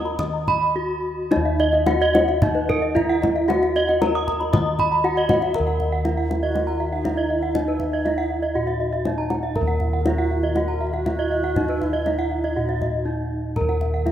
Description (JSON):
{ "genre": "Balinese gamelan", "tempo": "107-120 BPM", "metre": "4/4", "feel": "straight", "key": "Eb pelog", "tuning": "A4 = 438 Hz", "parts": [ { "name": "gamelan-type bronze metallophone", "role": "melody", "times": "0.0-14.1 s", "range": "Eb4 to Eb5", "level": "-26 LUFS", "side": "right 1 dB", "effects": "none" }, { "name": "gamelan-type bronze metallophone", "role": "arpeggios", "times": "0.0-14.1 s", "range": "Cb5 to Eb6", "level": "-28 LUFS", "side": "left 4 dB", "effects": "none" }, { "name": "gamelan-type bossed gongs", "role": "bass", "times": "0.0-14.1 s", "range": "Eb2 to Bb4", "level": "-25 LUFS", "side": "equal", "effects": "none" }, { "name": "kendang", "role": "percussion", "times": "0.1-14.1 s", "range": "none", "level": "-26 LUFS", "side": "left 2 dB", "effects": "none" }, { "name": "gamelan-type bronze metallophone", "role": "arpeggios", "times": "0.5-14.1 s", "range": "Bb4 to Eb6", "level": "-25 LUFS", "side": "right 3 dB", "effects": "none" }, { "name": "breathy bright low xiao", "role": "second line", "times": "6.4-13.2 s", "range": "Eb4 to Bb4", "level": "-32 LUFS", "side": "right 1 dB", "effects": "slapback echo" } ], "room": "moderate plate reverb, RT60 3.0 s", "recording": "rough home demo mix", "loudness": "-19 LUFS", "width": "side -10 dB against mid", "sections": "0.0-5.6 A section; 5.6-14.1 B section", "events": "break 12.8-13.6", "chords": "none", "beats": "0.19 0.75 | 1.31 1.87 2.42 2.96 | 3.49 4.02 4.54 5.05 | 5.55 6.05 6.55 7.05 | 7.55 8.05 8.55 9.06 | 9.56 10.06 10.56 11.06 | 11.56 12.06 12.56 13.06 | 13.56 14.06" }